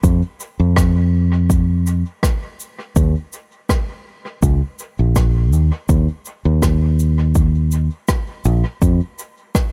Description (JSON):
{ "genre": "ambient dub", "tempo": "82 BPM", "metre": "4/4", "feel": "swing 54% on 16ths", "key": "unclear", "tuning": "A4 = 440 Hz", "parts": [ { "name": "fingered electric bass", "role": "bass", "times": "0.0-9.0 s", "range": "Bb1 to F2", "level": "-17 LUFS", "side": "equal", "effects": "none" }, { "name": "cabasa and rim click", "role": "drums", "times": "0.0-9.7 s", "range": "none", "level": "-28 LUFS", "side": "equal", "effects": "dub echo" }, { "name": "electronic kick drum", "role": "drums", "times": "0.0-9.7 s", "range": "none", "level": "-20 LUFS", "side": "equal", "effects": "overdrive" } ], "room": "little or no reverb", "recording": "none", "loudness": "-17 LUFS", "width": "mono", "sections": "0.0-9.7 A section", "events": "none", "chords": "none" }